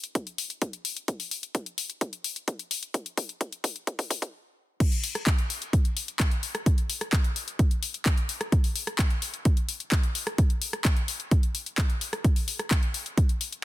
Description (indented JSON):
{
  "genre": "EDM",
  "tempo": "129 BPM",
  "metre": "4/4",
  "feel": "straight",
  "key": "none",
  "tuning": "none",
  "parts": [
    { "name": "house drum kit", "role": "drums", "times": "0.0-13.6 s", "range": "crash cymbal, handclaps, hi-hat, rim click", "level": "-30 LUFS", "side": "left 3 dB", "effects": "overdrive" },
    { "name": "electronic kick drum", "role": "drums", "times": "0.2-13.3 s", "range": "none", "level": "-23 LUFS", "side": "equal", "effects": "overdrive, high-pass filter on kick" }
  ],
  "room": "little or no reverb",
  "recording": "dense, heavily limited modern master, high-pass filter",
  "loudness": "-25 LUFS",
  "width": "side -16 dB against mid",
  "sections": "0.0-4.8 A section; 4.8-13.6 B section",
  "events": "build-up 0.0-4.8; drum fill 1.1-4.3; stop 4.3-4.8; drop 4.8-13.6",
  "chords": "none",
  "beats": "0.15 0.62 | 1.08 1.55 2.01 2.48 | 2.94 3.41 3.87 4.34 | 4.80 5.27 5.73 6.20 | 6.66 7.13 7.59 8.06 | 8.52 8.99 9.45 9.92 | 10.38 10.85 11.31 11.78 | 12.24 12.71 13.18"
}